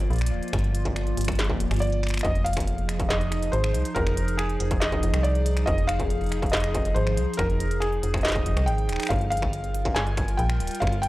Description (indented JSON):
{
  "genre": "IDM",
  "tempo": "140 BPM",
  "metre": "4/4",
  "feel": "straight",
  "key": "F dorian",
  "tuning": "A4 = 440 Hz",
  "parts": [
    { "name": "felt-muted upright piano", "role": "melody", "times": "0.0-11.1 s", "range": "Ab4 to Ab5", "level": "-29 LUFS", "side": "equal", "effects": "tape echo" },
    { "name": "warbly tape-like pad", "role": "sustained chords", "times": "0.0-11.1 s", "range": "F3 to Bb4", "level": "-32 LUFS", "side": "right 1 dB", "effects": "chorus, built-in reverb, phaser, sidechain pumping" },
    { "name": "metallic FM bass", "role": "bass", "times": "0.0-11.1 s", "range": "D1 to C2", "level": "-26 LUFS", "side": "equal", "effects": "none" },
    { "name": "industrial drum kit", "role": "drums", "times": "0.0-11.1 s", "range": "finger snaps, hi-hat, snare drum", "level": "-32 LUFS", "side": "equal", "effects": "none" },
    { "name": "electronic kick drum", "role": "drums", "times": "0.5-10.9 s", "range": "none", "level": "-28 LUFS", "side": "equal", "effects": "distortion" }
  ],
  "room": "little or no reverb",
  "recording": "dry, gritty hardware recording",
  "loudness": "-22 LUFS",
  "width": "side -17 dB against mid",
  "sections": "0.0-11.1 A section",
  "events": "drum fill 2.0",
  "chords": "0.0 Gm7; 2.2 Fm7; 9.1 Gm7"
}